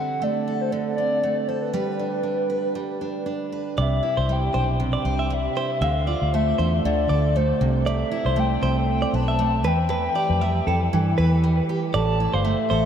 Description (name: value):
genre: acoustic pop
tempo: 118 BPM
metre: 4/4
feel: swing 55% on 16ths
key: A minor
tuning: A4 = 440 Hz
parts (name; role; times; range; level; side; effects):
- hollow clarinet-like synth lead; melody; 0.0-12.9 s; B4 to A5; -26 LUFS; left 3 dB; chorus, phaser, tape echo
- picked steel-string acoustic guitar; accompaniment; 0.0-12.9 s; A2 to C5; -26 LUFS; right 4 dB; none
- direct-recorded clean electric guitar; arpeggios; 3.8-12.8 s; A4 to E5; -28 LUFS; right 3 dB; harmonic tremolo, tape echo
- vintage muted fingered electric bass; bass; 3.8-12.9 s; G1 to G2; -23 LUFS; left 1 dB; none
room: moderate huge ambient reverb, RT60 7.4 s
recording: dreamy mix soaked in reverb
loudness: -20 LUFS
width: side -8 dB against mid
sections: 0.0-3.8 A section; 3.8-11.9 B section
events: none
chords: 0.0 D5; 1.8 G; 3.8 Cadd9; 5.8 Dm; 7.6 Amadd9/C; 9.6 Em; 11.9 Am